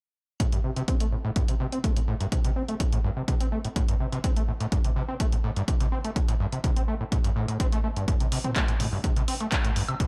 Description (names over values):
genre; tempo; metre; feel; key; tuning
acid house; 125 BPM; 4/4; straight; A minor; A4 = 440 Hz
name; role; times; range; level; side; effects
overdriven acid bass; riff; 0.4-10.1 s; G2 to C4; -32 LUFS; equal; distortion, tube saturation, lush chorus, delay
electronic kick drum; drums; 0.4-10.1 s; none; -28 LUFS; equal; none
punchy analog drum machine; drums; 0.4-10.1 s; handclaps, hi-hat, toms, woodblock; -35 LUFS; equal; none
room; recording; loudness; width
little or no reverb; dark, warm production; -27 LUFS; mono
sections
0.4-10.1 A section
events
filter sweep on acid bass 0.4-10.1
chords
none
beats
| 0.40 0.88 1.36 1.84 | 2.32 2.80 3.28 3.76 | 4.24 4.72 5.20 5.68 | 6.16 6.64 7.12 7.60 | 8.08 8.56 9.04 9.52 | 10.00